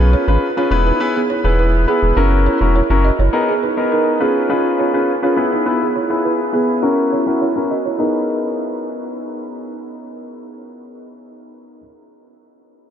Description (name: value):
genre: afrobeats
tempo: 103 BPM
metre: 4/4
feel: straight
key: G# minor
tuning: A4 = 441 Hz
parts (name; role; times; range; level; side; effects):
- clear concert grand piano; accompaniment; 0.0-11.8 s; B3 to B4; -18 LUFS; left 3 dB; low-pass filter
- saturated sub bass; bass; 0.0-3.3 s; E1 to B1; -14 LUFS; equal; none
- balafon; riff; 0.1-9.7 s; B3 to D#5; -20 LUFS; right 5 dB; low-pass filter, tape echo
room: moderate huge ambient reverb, RT60 8.2 s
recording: dreamy mix soaked in reverb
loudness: -14 LUFS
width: side -9 dB against mid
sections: 0.0-8.0 A section; 8.0-10.3 B section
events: filter sweep 0.0-8.0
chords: 0.0 C#7; 0.7 E; 2.2 F#7; 3.3 G#madd9; 4.2 C#7; 5.4 E; 6.8 F#7; 8.0 G#madd9